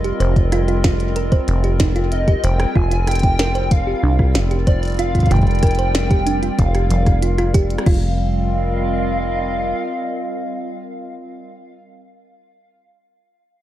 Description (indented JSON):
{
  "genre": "IDM",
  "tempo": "94 BPM",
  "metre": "4/4",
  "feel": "straight",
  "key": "unclear",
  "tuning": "A4 = 440 Hz",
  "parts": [
    { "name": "warbly tape-like pad", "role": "sustained chords", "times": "0.0-11.2 s", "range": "G3 to Eb5", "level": "-25 LUFS", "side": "equal", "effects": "chorus, built-in reverb" },
    { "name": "thumb-piano-like synth pluck", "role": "arpeggios", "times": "0.0-8.2 s", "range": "F3 to C5", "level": "-25 LUFS", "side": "right 3 dB", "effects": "chorus, tape echo" },
    { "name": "deep acid bass", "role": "bass", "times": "0.0-9.7 s", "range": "F1 to C2", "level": "-19 LUFS", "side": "equal", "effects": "none" },
    { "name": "glitchy drum kit", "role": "drums", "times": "0.0-8.0 s", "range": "crash cymbal, hi-hat, rim click, snare drum", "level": "-26 LUFS", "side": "equal", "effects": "none" },
    { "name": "electronic kick drum", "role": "drums", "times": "0.4-8.0 s", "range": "none", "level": "-15 LUFS", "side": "equal", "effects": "none" },
    { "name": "warbly nostalgic lead", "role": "melody", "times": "2.1-11.1 s", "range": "D5 to Ab5", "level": "-25 LUFS", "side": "equal", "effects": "ensemble chorus, digital delay" }
  ],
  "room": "little or no reverb",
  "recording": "dark, warm production",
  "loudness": "-15 LUFS",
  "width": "side -13 dB against mid",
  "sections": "0.0-7.9 A section; 7.9-10.4 B section",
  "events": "none",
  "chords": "0.0 Cm7/F; 2.8 Gm7/F; 7.9 F5"
}